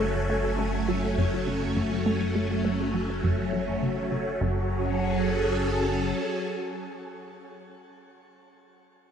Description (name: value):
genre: ambient, sequencer-driven space music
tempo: 102 BPM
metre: 4/4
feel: straight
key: F# minor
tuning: A4 = 440 Hz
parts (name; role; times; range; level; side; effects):
- phased string machine; sustained chords; 0.0-7.5 s; F#3 to G#5; -27 LUFS; equal; ensemble chorus, phaser, shimmer reverb
- concert harp; arpeggios; 0.0-6.8 s; F#4 to C#6; -43 LUFS; right 2 dB; none
- resonant blip pluck; riff; 0.0-4.7 s; F#2 to A3; -30 LUFS; equal; phaser, analog delay, shimmer reverb
- fat analog bass; bass; 0.0-6.1 s; F#1; -31 LUFS; equal; none
room: wet plate reverb, RT60 2.7 s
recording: dreamy mix soaked in reverb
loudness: -24 LUFS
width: side -8 dB against mid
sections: 0.0-4.4 A section; 4.4-6.8 B section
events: fade-out on harp 0.0-4.4; filter sweep on synth arpeggio sound 0.0-4.4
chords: 0.0 F#m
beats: 0.29 0.88 1.47 | 2.06 2.65 3.23 3.82 | 4.41 5.00 5.59 6.18